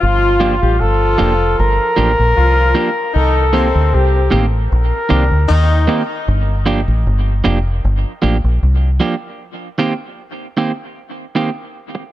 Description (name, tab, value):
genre	reggae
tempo	77 BPM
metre	4/4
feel	straight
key	G minor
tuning	A4 = 440 Hz
part	warm flugelhorn	melody	0.0-5.8 s	F4 to Bb4	-17 LUFS	left 1 dB	dub echo
part	warm horn section	second line	0.0-6.0 s	C3 to G4	-21 LUFS	left 4 dB	dub echo
part	deep dub fingered electric bass	bass	0.0-9.0 s	F1 to Eb2	-14 LUFS	equal	none
part	electric guitar at the edge of break-up	accompaniment	0.4-12.0 s	Eb3 to G4	-20 LUFS	right 3 dB	dub echo
room	light reverb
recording	none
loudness	-12 LUFS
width	side -14 dB against mid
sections	0.0-12.1 A section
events	break 9.4-12.1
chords	0.0 Gm7; 3.1 Cm7; 6.3 Gm7; 9.4 Cm7